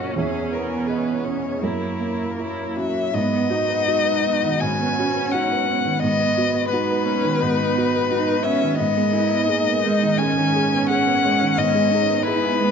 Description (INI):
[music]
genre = neoclassical piano and strings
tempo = 77-89 BPM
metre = 4/4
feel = rubato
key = unclear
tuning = A4 = 440 Hz
[part]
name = rich violin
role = melody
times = 0.0-12.7 s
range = F#4 to G#5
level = -22 LUFS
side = left 6 dB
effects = none
[part]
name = warm cello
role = second line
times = 0.0-12.7 s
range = A#3 to E4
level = -26 LUFS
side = right 6 dB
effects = none
[part]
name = felt-muted upright piano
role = accompaniment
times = 0.0-12.7 s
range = E2 to E5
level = -24 LUFS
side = right 3 dB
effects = none
[part]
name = rich viola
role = accompaniment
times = 0.0-12.7 s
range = A#3 to F#4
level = -29 LUFS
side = right 3 dB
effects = none
[part]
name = chorused pulse-width pad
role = sustained chords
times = 0.0-12.7 s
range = G#3 to A#5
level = -30 LUFS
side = right 1 dB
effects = none
[sound]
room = moderate scoring stage reverb, RT60 1.6 s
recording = dark, warm production, nothing above 7.6 kHz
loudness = -18 LUFS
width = side -6 dB against mid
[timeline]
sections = 0.0-3.1 A section; 3.1-12.7 B section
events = none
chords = 0.2 C#m7/E; 1.6 F#7; 3.1 B/G#; 8.8 G#madd9